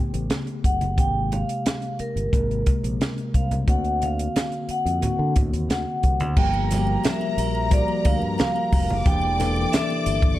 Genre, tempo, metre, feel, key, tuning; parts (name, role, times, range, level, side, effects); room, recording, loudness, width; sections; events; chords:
lush 1970s-style soul; 89 BPM; 4/4; straight; G dorian from 6.4 s; A4 = 442 Hz
mellow tine electric piano; accompaniment; 0.0-10.4 s; C3 to Bb4; -28 LUFS; left 2 dB; medium stereo tremolo
fingered electric bass; bass; 0.1-10.4 s; E1 to D3; -26 LUFS; equal
compact cocktail drum kit; drums; 0.1-10.4 s; crash cymbal, hi-hat, kick drum, snare drum; -22 LUFS; equal
congas; percussion; 0.3-9.9 s; -32 LUFS; right 2 dB
vibraphone with medium hard mallets; melody; 0.7-10.4 s; Bb4 to G5; -27 LUFS; equal
warm studio string section; second line; 6.4-10.4 s; Bb4 to D6; -30 LUFS; left 1 dB
triangle; percussion; 6.4-10.4 s; -43 LUFS; right 6 dB
studio reverb; -20 LUFS; side -15 dB against mid
0.0-6.4 A section; 6.4-10.4 B section
0.0 A9; 1.0 Abmaj9; 3.7 D7alt; 6.4 Gm7; 9.1 Em7b5